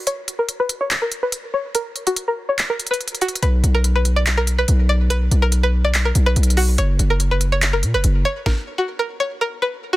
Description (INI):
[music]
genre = hip hop, trap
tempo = 143 BPM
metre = 4/4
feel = half-time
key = B harmonic minor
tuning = A4 = 440 Hz
[part]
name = string-like resonator pluck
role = melody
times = 0.0-10.0 s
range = F#4 to D5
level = -22 LUFS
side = equal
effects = chorus, low-pass filter
[part]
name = trap drum kit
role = drums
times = 0.1-8.6 s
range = handclaps, hi-hat, kick drum, snare drum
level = -22 LUFS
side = equal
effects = none
[part]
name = distorted 808-style bass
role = bass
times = 3.4-8.2 s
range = F#1 to A#2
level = -16 LUFS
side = equal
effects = distortion
[sound]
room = digital ambience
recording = dense, heavily limited modern master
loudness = -17 LUFS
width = side -17 dB against mid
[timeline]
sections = 0.0-10.0 A section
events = break 0.0-3.4; filter sweep on synth pluck 0.0-3.4; stop 8.5-10.0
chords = 0.0 N.C.; 3.4 Bmaj7(no3); 6.8 F#